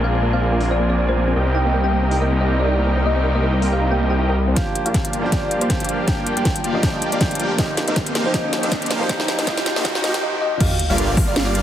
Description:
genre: future bass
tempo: 159 BPM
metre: 4/4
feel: swing 55% on 16ths, half-time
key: unclear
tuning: A4 = 440 Hz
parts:
  - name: thumb-piano-like synth pluck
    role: melody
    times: 0.0-11.6 s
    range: C5 to G5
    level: -26 LUFS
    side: left 1 dB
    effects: wide subtle chorus, sidechain pumping, tape echo
  - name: rich chamber string section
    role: sustained chords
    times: 0.0-10.2 s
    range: F2 to G4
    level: -32 LUFS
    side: left 1 dB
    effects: sidechain pumping
  - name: soft round pluck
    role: arpeggios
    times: 0.0-4.5 s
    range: Bb3 to Bb4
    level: -27 LUFS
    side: right 1 dB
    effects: chorus, sidechain pumping, digital delay
  - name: supersaw chords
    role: riff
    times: 0.0-11.6 s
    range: Bb3 to Ab5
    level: -24 LUFS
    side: right 1 dB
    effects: lush chorus, sidechain pumping, low-pass filter
  - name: wide detuned saw bass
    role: bass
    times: 0.0-4.6, 10.6-11.6 s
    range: G1 to C2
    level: -19 LUFS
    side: equal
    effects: chorus, sidechain pumping
  - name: trap drum kit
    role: drums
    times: 0.6-11.6 s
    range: crash cymbal, hi-hat, snare drum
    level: -25 LUFS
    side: left 1 dB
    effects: high-pass filter on cymbals, low-pass filter on cymbals, high-pass filter on hats, low-pass filter on hats, high-pass filter on snare, low-pass filter on snare
  - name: bright concert grand piano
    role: accompaniment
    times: 4.5-10.6 s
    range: F3 to G4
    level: -26 LUFS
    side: right 2 dB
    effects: sidechain pumping, digital delay
  - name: electronic kick drum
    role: drums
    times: 4.6-11.3 s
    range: none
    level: -22 LUFS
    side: equal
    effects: overdrive
  - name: riser and sub drop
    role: sound effects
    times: 6.0-11.6 s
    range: none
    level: -28 LUFS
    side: right 1 dB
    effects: none
  - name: airy dreamy lead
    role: arpeggios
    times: 10.6-11.6 s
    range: F5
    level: -29 LUFS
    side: equal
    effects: chorus, sidechain pumping
room: light reverb, digital ambience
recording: heavily compressed radio sound, high-pass filter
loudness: -17 LUFS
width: side -11 dB against mid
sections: 0.0-4.6 A section; 4.6-10.6 B section; 10.6-11.6 C section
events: build-up 4.6-10.6; drum fill 4.6-10.2; filter sweep on supersaw synth 4.6-10.6; filter sweep on synth pluck 4.6-10.6; filter sweep 4.6-10.6; riser 6.0-10.2; drop 10.6-11.6; impact 10.6-11.6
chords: 0.0 Bb9; 1.4 Cm7; 4.6 Gm7; 7.6 F9sus4; 10.6 Gm7

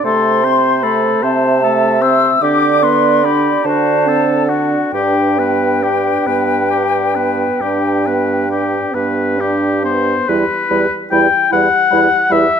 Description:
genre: classical, slow romantic movement for wind quintet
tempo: 43-52 BPM (dotted quarters)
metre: 12/8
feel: rubato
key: G major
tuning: A4 = 440 Hz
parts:
  - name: mellow concert flute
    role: melody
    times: 0.0-12.4 s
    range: F#5 to E6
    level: -18 LUFS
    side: left 7 dB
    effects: none
  - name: warm oboe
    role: second line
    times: 0.0-12.6 s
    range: F#4 to G5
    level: -17 LUFS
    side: left 4 dB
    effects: none
  - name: clear French horn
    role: accompaniment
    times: 0.0-12.5 s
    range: G3 to D4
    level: -20 LUFS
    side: equal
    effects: none
  - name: warm clarinet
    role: accompaniment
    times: 0.0-12.5 s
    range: E4 to E5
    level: -21 LUFS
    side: right 9 dB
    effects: none
  - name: warm bassoon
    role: bass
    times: 0.0-12.5 s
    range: E2 to D3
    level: -18 LUFS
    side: right 4 dB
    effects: none
room: moderate recital hall reverb, RT60 1.8 s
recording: none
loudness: -12 LUFS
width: side -7 dB against mid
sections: 0.0-10.3 A section; 10.3-12.6 B section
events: none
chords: 0.0 Am/C; 2.4 G/D; 3.7 D7; 4.9 G; 10.3 Em

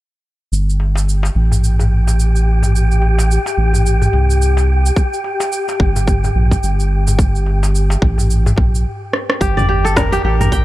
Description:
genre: organic downtempo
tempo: 108 BPM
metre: 4/4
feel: swing 58% on 16ths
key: G minor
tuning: A4 = 440 Hz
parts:
  - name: round analog bass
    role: bass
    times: 0.5-10.6 s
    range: G1 to C2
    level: -14 LUFS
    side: equal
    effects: sidechain pumping
  - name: organic electronic drum kit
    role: drums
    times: 0.5-10.6 s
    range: cabasa, hi-hat, rim click, snare drum, toms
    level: -22 LUFS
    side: right 1 dB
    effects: overdrive
  - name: wind-like tuned noise texture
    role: texture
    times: 1.5-10.6 s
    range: D4 to G5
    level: -22 LUFS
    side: left 1 dB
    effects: built-in reverb
  - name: darbuka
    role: percussion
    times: 0.8-10.5 s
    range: none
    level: -23 LUFS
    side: left 1 dB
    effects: none
  - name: electronic kick drum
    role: drums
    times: 5.0-10.6 s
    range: none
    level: -15 LUFS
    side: equal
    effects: overdrive
  - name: kora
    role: arpeggios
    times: 9.4-10.6 s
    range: G4 to G5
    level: -16 LUFS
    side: equal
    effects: tape echo
room: digital ambience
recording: dark, warm production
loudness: -13 LUFS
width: side -16 dB against mid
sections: 0.5-9.4 A section; 9.4-10.6 B section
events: filter sweep on analog synth bass 0.5-9.4; stop 8.9-9.4; drum fill 9.1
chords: 0.5 Gsus24; 5.0 N.C.; 9.4 Gm

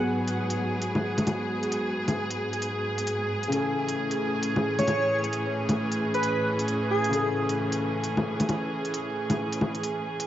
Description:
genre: future garage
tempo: 133 BPM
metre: 4/4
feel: swing 60% on 16ths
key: unclear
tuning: A4 = 440 Hz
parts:
  - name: felt-muted upright piano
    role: accompaniment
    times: 0.0-10.3 s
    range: C#3 to G#4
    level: -33 LUFS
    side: left 2 dB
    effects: cassette tape, tape echo
  - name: rich studio string section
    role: sustained chords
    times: 0.0-10.3 s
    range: G#2 to G#4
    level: -29 LUFS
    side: equal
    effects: cassette tape
  - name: drifting glass-harmonics texture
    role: texture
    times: 0.0-10.3 s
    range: G#4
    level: -34 LUFS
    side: right 6 dB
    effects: chorus, built-in reverb, cassette tape
  - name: electronic hi-hat and bongos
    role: drums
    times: 0.3-10.3 s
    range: none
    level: -29 LUFS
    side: left 1 dB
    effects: small room ambience, cassette tape
  - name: airy dreamy lead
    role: melody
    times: 4.8-7.3 s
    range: G#4 to C#5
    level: -30 LUFS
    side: right 1 dB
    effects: chorus, tape echo
room: moderate studio reverb, RT60 0.6 s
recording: home recording on cassette, nothing above 7.6 kHz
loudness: -25 LUFS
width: side -12 dB against mid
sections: 0.0-10.3 A section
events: none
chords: 0.0 G#m7; 3.5 Amaj7

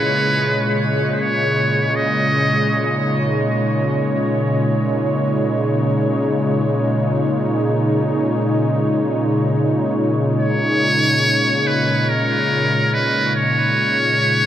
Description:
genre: ambient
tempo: free time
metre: none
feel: none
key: C# dorian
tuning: A4 = 442 Hz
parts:
  - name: trumpet with metal mute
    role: melody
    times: 0.0-3.2, 10.4-14.5 s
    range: A#4 to D#5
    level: -18 LUFS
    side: equal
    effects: dub echo
  - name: warm analog pad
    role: sustained chords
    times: 0.0-14.5 s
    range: A#2 to C#5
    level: -17 LUFS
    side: equal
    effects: lush chorus
room: light reverb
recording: echo-heavy mix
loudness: -16 LUFS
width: side -10 dB against mid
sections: 0.0-14.5 A section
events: none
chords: 0.0 C#m69

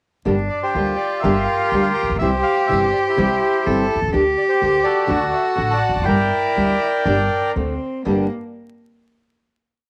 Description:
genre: tango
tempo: 123 BPM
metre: 4/4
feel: rubato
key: G dorian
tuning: A4 = 440 Hz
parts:
  - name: bright cello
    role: second line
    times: 0.3-8.3 s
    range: Bb3 to A4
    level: -24 LUFS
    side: equal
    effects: cassette tape
  - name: nylon-string guitar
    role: accompaniment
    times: 0.3-8.3 s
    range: G2 to G4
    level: -24 LUFS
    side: equal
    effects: cassette tape
  - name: upright bass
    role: bass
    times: 0.3-8.3 s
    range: E1 to D2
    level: -27 LUFS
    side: equal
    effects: none
  - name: bandoneon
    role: melody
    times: 0.5-7.5 s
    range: E4 to A5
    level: -22 LUFS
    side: equal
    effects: cassette tape
room: moderate spring reverb, RT60 1.1 s, studio reverb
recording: home recording on cassette, vinyl crackle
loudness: -19 LUFS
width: mono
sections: 0.3-8.1 A section; 8.1-9.9 final chord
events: none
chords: 0.3 Gm; 2.2 C; 4.1 Gm/D; 5.1 D; 6.1 Gm; 7.5 D7; 8.1 G5

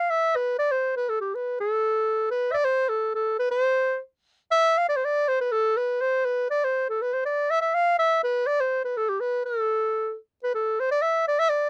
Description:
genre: klezmer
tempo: 122 BPM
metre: 2/4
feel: straight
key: A minor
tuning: A4 = 440 Hz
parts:
  - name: warm clarinet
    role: solo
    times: 0.0-11.7 s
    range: G4 to F5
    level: -24 LUFS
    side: equal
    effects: none
room: light reverb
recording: dry, close 1970s-style studio recording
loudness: -25 LUFS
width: mono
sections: 0.0-2.6 A section; 2.6-10.4 A section; 10.4-11.7 B section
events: none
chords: none

